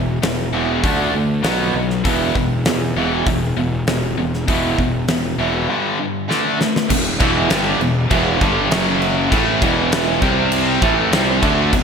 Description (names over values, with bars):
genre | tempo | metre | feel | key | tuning
hard rock | 99 BPM | 4/4 | straight | E minor | A4 = 439 Hz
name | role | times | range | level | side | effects
overdriven semi-hollow guitar | riff | 0.0-11.8 s | E2 to D4 | -21 LUFS | right 9 dB | lush chorus
tight distorted guitar | riff | 0.0-11.8 s | E2 to D4 | -20 LUFS | left 10 dB | distortion
fuzz fingered electric bass | bass | 0.0-11.8 s | E1 to E2 | -23 LUFS | equal | overdrive
huge arena drum kit | drums | 0.2-11.8 s | crash cymbal, hi-hat, kick drum, snare drum | -21 LUFS | equal | none
high-gain distorted guitar | riff | 6.9-11.8 s | E2 to D4 | -22 LUFS | equal | distortion
room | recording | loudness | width
moderate lush hall reverb, RT60 2.4 s | bright 1980s-style digital production | -15 LUFS | side -6 dB against mid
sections
0.0-6.9 A section; 6.9-11.8 B section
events
drum fill 6.3-6.9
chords
0.0 E5; 0.8 D5; 1.4 B5; 2.1 E5; 5.7 G5; 6.3 D5; 6.9 Em; 8.7 F#5; 9.3 E5; 10.2 C5; 10.8 Em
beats
0.23 0.84 1.45 | 2.05 2.66 3.27 3.87 | 4.48 5.08 5.69 6.29 | 6.90 7.50 8.11 8.71 | 9.31 9.91 10.52 11.12 | 11.72